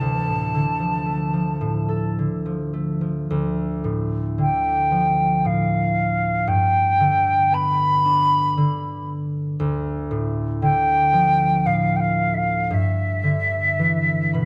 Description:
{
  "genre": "celtic folk",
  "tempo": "57 BPM",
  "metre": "3/4",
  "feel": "uneven beats, rubato",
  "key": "D dorian",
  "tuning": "A4 = 441 Hz",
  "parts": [
    { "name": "wooden flute", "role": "melody", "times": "0.0-14.5 s", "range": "E5 to B5", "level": "-22 LUFS", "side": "equal", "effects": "none" },
    { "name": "concert harp", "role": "accompaniment", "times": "0.0-14.5 s", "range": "D2 to B5", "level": "-24 LUFS", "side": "equal", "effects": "none" }
  ],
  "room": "light reverb",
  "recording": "close, detailed microphones",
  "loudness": "-21 LUFS",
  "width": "mono",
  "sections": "0.0-3.3 A section; 3.3-14.5 B section",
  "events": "harp fill 13.8-14.5",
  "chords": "0.0 Dm; 6.5 G; 9.6 Dm; 12.7 G6"
}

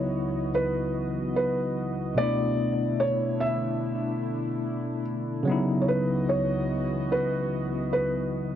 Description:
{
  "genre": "hip hop",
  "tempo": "73 BPM",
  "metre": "4/4",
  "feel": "swing 60% on 16ths",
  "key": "C# phrygian",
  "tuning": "A4 = 441 Hz",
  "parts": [
    { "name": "felt-muted upright piano", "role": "melody", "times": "0.0-8.6 s", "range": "B4 to E5", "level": "-28 LUFS", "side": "right 1 dB", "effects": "low-pass filter, analog delay" },
    { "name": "tine electric piano", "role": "accompaniment", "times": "0.0-8.6 s", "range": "B2 to E4", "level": "-27 LUFS", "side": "left 1 dB", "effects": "fast stereo tremolo, cassette tape, low-pass filter" },
    { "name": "warbly tape-like pad", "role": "sustained chords", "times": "0.0-8.6 s", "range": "C#2 to D#5", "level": "-35 LUFS", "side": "right 1 dB", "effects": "chorus, built-in reverb, low-pass filter" }
  ],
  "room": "light reverb, studio ambience",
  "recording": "none",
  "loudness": "-25 LUFS",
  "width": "side -10 dB against mid",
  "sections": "0.0-8.6 A section",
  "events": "none",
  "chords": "0.0 C#m11; 2.2 Bm7; 5.5 C#m11"
}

